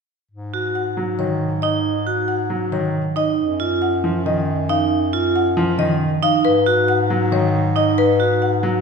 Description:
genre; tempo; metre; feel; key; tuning
classical, minimalist pattern music; 274 BPM (eighths); 7/8; straight; G# dorian; A4 = 438 Hz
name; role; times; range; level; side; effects
bright bass clarinet; bass; 0.3-8.8 s; F#2 to G#2; -23 LUFS; left 2 dB; none
vibraphone with hard mallets; arpeggios; 0.5-8.5 s; D#4 to F#4; -21 LUFS; right 4 dB; none
marimba with medium mallets; melody; 0.8-8.7 s; B4 to F#5; -22 LUFS; left 3 dB; none
clear grand piano; accompaniment; 1.0-8.8 s; D#3 to F#3; -22 LUFS; equal; none
room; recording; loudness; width
wet scoring stage reverb, RT60 1.5 s; recorded in a church or concert hall; -16 LUFS; side -5 dB against mid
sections
0.3-8.8 A section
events
none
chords
0.3 G#5; 3.4 D#madd9/F#; 6.4 G#m7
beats
| 0.31 0.53 0.75 0.97 1.19 1.41 1.63 | 1.85 2.07 2.29 2.50 2.72 2.94 3.16 | 3.38 3.60 3.82 4.04 4.26 4.47 4.69 | 4.91 5.13 5.35 5.57 5.79 6.01 6.23 | 6.45 6.67 6.88 7.10 7.32 7.54 7.76 | 7.98 8.20 8.42 8.64

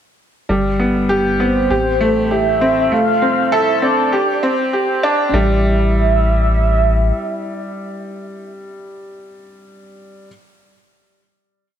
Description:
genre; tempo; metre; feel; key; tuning
piano and strings electronica; 99 BPM; 4/4; straight; A minor; A4 = 438 Hz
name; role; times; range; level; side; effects
bright upright piano; riff; 0.5-10.3 s; G3 to A4; -17 LUFS; equal; tape echo
round analog bass; bass; 0.5-7.1 s; E1 to A1; -19 LUFS; equal; none
warm velvety synth lead; melody; 1.4-8.5 s; C5 to F5; -19 LUFS; right 2 dB; chorus, tremolo, tape echo
room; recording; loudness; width
moderate recital hall reverb, RT60 1.6 s, studio ambience; high-pass filter; -13 LUFS; side -9 dB against mid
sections
0.5-5.3 build; 5.3-7.8 final chord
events
build-up 0.5-5.3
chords
0.5 G; 1.7 Am7; 2.9 F; 4.1 Cadd9/E; 5.3 A5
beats
| 0.49 1.10 1.70 2.31 | 2.92 3.52 4.13 4.73 | 5.34 5.95 6.55 7.16

